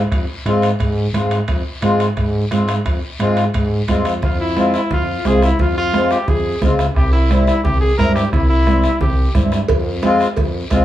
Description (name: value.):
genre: latin, cumbia.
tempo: 176 BPM.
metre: 4/4.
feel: straight.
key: F harmonic minor.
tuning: A4 = 440 Hz.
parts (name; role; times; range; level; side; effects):
growling FM bass; bass; 0.0-10.8 s; C2 to Ab2; -18 LUFS; equal; none.
bombo; percussion; 0.1-10.8 s; none; -21 LUFS; equal; none.
congas; percussion; 0.1-10.8 s; none; -22 LUFS; right 3 dB; none.
guiro; percussion; 0.1-10.8 s; none; -35 LUFS; left 3 dB; none.
timbales and cowbell; percussion; 0.1-4.2, 9.7-10.8 s; none; -27 LUFS; right 3 dB; none.
accordion; accompaniment; 0.5-10.8 s; G3 to F4; -19 LUFS; left 3 dB; light tremolo tuning.
clear trumpet; melody; 4.2-9.3 s; E4 to Bb4; -20 LUFS; left 1 dB; plate reverb.
room: wet small room ambience, RT60 0.5 s.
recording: heard from further back in the room, small room ambience.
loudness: -14 LUFS.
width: side -13 dB against mid.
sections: 0.0-4.2 A section; 4.2-10.8 B section.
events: none.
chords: 0.0 Fm; 7.0 C; 9.7 Fm.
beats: | 0.11 0.46 0.80 1.14 | 1.49 1.83 2.17 2.51 | 2.86 3.20 3.54 3.88 | 4.23 4.57 4.91 5.25 | 5.59 5.93 6.28 6.62 | 6.96 7.30 7.64 7.98 | 8.32 8.67 9.01 9.35 | 9.69 10.03 10.37 10.71.